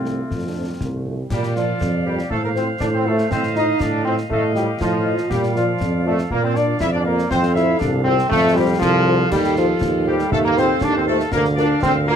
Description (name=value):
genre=military-style march for wind band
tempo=120 BPM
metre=2/4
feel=straight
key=F major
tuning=A4 = 440 Hz
part: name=mellow trumpet section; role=melody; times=0.0-12.2 s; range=F4 to E5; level=-28 LUFS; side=left 2 dB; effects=none
part: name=mellow euphonium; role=second line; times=0.0-1.1 s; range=A3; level=-33 LUFS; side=right 1 dB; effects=none
part: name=warm woodwind section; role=second line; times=0.0-12.2 s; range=C4 to F5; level=-26 LUFS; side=left 1 dB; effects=none
part: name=clear trombone section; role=sustained chords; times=0.0-12.2 s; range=F3 to E4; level=-21 LUFS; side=right 1 dB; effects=none
part: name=clear tuba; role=bass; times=0.0-12.2 s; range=C2 to Bb2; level=-21 LUFS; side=right 2 dB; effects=none
part: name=dark French horn section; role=accompaniment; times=0.1-12.2 s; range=F3 to Eb5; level=-25 LUFS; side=left 5 dB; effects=none
part: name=concert snare drum, concert bass drum and clash cymbals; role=drums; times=0.1-12.0 s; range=none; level=-28 LUFS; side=left 2 dB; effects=none
room=moderate small room ambience, RT60 0.5 s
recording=none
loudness=-16 LUFS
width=side -8 dB against mid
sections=0.0-1.3 A section; 1.3-12.2 B section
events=none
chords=0.0 F; 1.3 Bb; 2.3 F/A; 3.3 F7/A; 5.3 Bb; 7.3 F; 9.3 F7/Eb; 11.3 Bb/D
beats=| 0.30 0.80 | 1.30 1.80 | 2.30 2.81 | 3.31 3.81 | 4.31 4.81 | 5.31 5.81 | 6.31 6.81 | 7.31 7.82 | 8.32 8.82 | 9.32 9.82 | 10.32 10.82 | 11.32 11.82